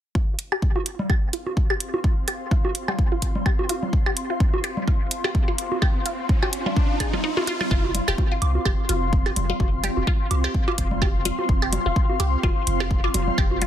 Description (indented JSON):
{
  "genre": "minimal techno",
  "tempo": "127 BPM",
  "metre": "4/4",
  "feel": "swing 56% on 16ths",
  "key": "unclear",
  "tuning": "A4 = 440 Hz",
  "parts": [
    { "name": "ethereal airy pad", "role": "texture", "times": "1.3-13.7 s", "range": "C4 to C6", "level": "-29 LUFS", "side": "left 2 dB", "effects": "ensemble chorus, built-in reverb, sidechain pumping" },
    { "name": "resonant blip pluck", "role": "riff", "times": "0.2-13.7 s", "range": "Eb4 to Ab4", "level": "-29 LUFS", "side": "left 1 dB", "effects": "phaser, sidechain pumping, dub echo" },
    { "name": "electronic kick drum", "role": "drums", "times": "0.2-13.5 s", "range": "none", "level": "-21 LUFS", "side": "equal", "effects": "small room ambience" },
    { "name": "electronic hi-hat", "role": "drums", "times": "0.4-13.7 s", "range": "none", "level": "-26 LUFS", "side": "right 2 dB", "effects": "small room ambience" },
    { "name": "woodblock, bongos and congas", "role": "percussion", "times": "0.5-13.7 s", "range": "none", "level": "-29 LUFS", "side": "right 2 dB", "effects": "overdrive, small room ambience, dub echo" },
    { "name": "riser", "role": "sound effects", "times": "5.1-7.7 s", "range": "none", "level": "-32 LUFS", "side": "equal", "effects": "none" },
    { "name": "punchy sub bass", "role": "bass", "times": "7.7-13.7 s", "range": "Eb1 to C2", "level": "-25 LUFS", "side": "equal", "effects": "sidechain pumping" }
  ],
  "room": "light reverb",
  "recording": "dense, heavily limited modern master",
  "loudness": "-20 LUFS",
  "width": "side -10 dB against mid",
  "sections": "0.2-7.7 A section; 7.7-13.7 B section",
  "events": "filter sweep on synth arpeggio sound 0.2-7.7; riser 5.1-7.7; kick drops out 7.2-7.7",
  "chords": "0.2 F5",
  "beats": "| 0.15 0.62 1.10 1.57 | 2.04 2.51 2.99 3.46 | 3.93 4.40 4.88 5.35 | 5.82 6.29 6.76 7.24 | 7.71 8.18 8.65 9.13 | 9.60 10.07 10.54 11.02 | 11.49 11.96 12.44 12.91 | 13.38"
}